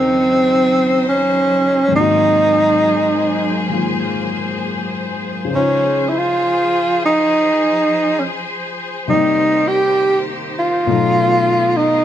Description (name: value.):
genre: jazz ballad.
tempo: 67 BPM.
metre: 4/4.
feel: swing 68% on 8ths.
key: unclear.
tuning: A4 = 438 Hz.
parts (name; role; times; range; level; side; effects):
breathy tenor saxophone; melody; 0.0-12.0 s; C4 to G4; -14 LUFS; right 1 dB; none.
warm baby grand piano; accompaniment; 0.0-12.0 s; Eb2 to D5; -22 LUFS; left 5 dB; none.
clear symphonic string section; sustained chords; 0.0-12.0 s; Db3 to C5; -22 LUFS; left 1 dB; none.
room: moderate large studio reverb, RT60 1.1 s.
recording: none.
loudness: -14 LUFS.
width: side -10 dB against mid.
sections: 0.0-12.0 A section.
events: none.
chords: 0.0 Ebm7; 1.9 Ab9; 5.5 Dbmaj7; 9.1 Cm7; 10.9 B7#11.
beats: 0.14 1.04 | 1.93 2.82 3.71 4.61 | 5.51 6.40 7.29 8.19 | 9.08 9.98 10.87 11.76.